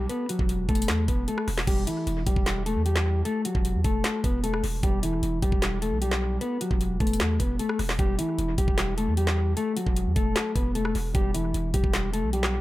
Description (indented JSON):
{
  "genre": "hip hop, trap",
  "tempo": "152 BPM",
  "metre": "4/4",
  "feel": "half-time",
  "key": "E minor",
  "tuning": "A4 = 436 Hz",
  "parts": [
    { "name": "mellow electric guitar", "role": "melody", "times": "0.0-12.6 s", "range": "E3 to B4", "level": "-28 LUFS", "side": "left 2 dB", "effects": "low-pass filter, analog delay" },
    { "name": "long sustained 808-style bass", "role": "bass", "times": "0.0-12.6 s", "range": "E1 to E2", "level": "-28 LUFS", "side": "equal", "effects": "none" },
    { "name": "trap drum kit", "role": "drums", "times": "0.1-12.5 s", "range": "crash cymbal, handclaps, hi-hat, kick drum, rim click, snare drum", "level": "-27 LUFS", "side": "equal", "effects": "none" }
  ],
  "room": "little or no reverb",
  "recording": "echo-heavy mix",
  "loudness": "-23 LUFS",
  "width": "side -16 dB against mid",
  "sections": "0.0-1.7 A section; 1.7-12.6 A section",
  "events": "none",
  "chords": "0.1 B5/E; 4.8 Em; 6.4 B5/E; 11.1 Em"
}